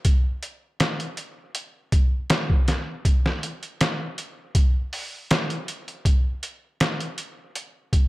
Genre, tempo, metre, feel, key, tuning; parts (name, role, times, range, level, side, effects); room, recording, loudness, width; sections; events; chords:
trip hop; 80 BPM; 4/4; straight
trip hop sampler-style drum kit; drums; 0.0-8.1 s; hi-hat, kick drum, snare drum; -21 LUFS; equal; studio reverb
digital ambience; -22 LUFS; side -20 dB against mid
0.0-8.1 A section